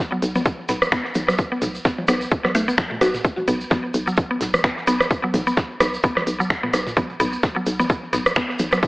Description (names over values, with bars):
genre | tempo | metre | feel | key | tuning
minimal techno | 129 BPM | 4/4 | swing 56% on 16ths | unclear | A4 = 440 Hz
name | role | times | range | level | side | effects
loose indie drum kit | drums | 0.0-8.9 s | hi-hat, snare drum | -37 LUFS | equal | none
mallet-like synth pluck | riff | 0.1-8.8 s | F#3 to F#4 | -24 LUFS | equal | chorus, sidechain pumping, tape echo
hollow knocking FM bass | bass | 0.2-8.8 s | B1 | -25 LUFS | equal | sidechain pumping
garage drum kit | drums | 0.2-8.7 s | finger snaps, hi-hat | -26 LUFS | equal | none
tube shaker | percussion | 0.2-8.9 s | none | -36 LUFS | right 1 dB | analog delay
booming analog drum machine | percussion | 0.4-8.8 s | rim click, toms | -24 LUFS | equal | analog delay
electronic kick drum | drums | 0.5-8.9 s | none | -22 LUFS | equal | none
room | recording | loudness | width
moderate plate reverb, RT60 1.9 s | echo-heavy mix, AM radio sound | -18 LUFS | side -22 dB against mid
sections
0.0-8.9 A section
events
none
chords
0.0 B5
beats
0.46 0.92 | 1.39 1.85 2.32 2.78 | 3.25 3.71 4.18 4.64 | 5.11 5.57 6.04 6.50 | 6.97 7.43 7.90 8.36 | 8.83